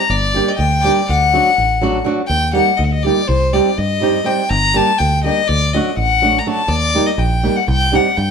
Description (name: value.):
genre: balkan folk, Balkan wedding band.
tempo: 246 BPM (eighths).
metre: 9/8.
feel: straight.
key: G harmonic minor.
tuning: A4 = 440 Hz.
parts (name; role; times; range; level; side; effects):
clear violin; melody; 0.0-8.3 s; C5 to Bb5; -16 LUFS; left 3 dB; none.
fingered electric bass; bass; 0.1-8.3 s; G1 to G2; -18 LUFS; equal; none.
flamenco guitar; accompaniment; 0.3-8.1 s; F#3 to G4; -18 LUFS; right 3 dB; none.
room: moderate studio reverb, RT60 0.7 s.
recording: band playing live in one room.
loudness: -13 LUFS.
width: side -6 dB against mid.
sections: 0.0-8.3 A section.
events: none.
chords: 0.1 Gm; 1.1 D; 2.3 Eb; 3.3 Cm; 4.5 Gm; 5.5 D; 6.7 Eb; 7.7 Cm.